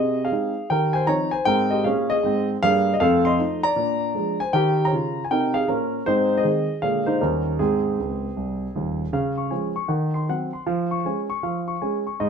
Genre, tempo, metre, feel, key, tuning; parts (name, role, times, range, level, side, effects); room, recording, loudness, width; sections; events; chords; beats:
jazz, stride piano; 157 BPM; 4/4; swing 65% on 8ths; Ab major, Db major from 9.1 s; A4 = 436 Hz
dark concert grand piano; solo; 0.0-12.3 s; Eb1 to Db6; -20 LUFS; equal
moderate studio reverb, RT60 0.8 s; minimal, uncompressed stereo recording; -20 LUFS; side -6 dB against mid
0.0-9.1 A section; 9.1-12.3 B section
grand piano fill 8.0-9.1
0.0 Ab/C; 0.7 Eb13; 1.5 Ab; 3.0 F7; 3.8 Bb7; 4.5 Eb13; 6.1 Ab; 6.8 Bb7; 7.2 Eb7; 7.6 Ab; 9.1 Db; 9.9 Cdim/Eb; 10.7 Db/F
0.31 0.69 1.07 | 1.46 1.84 2.23 2.61 | 3.00 3.38 3.76 4.15 | 4.53 4.91 5.30 5.68 | 6.06 6.45 6.83 7.21 | 7.59 7.98 8.36 8.74 | 9.13 9.51 9.89 10.28 | 10.66 11.04 11.42 11.81 | 12.19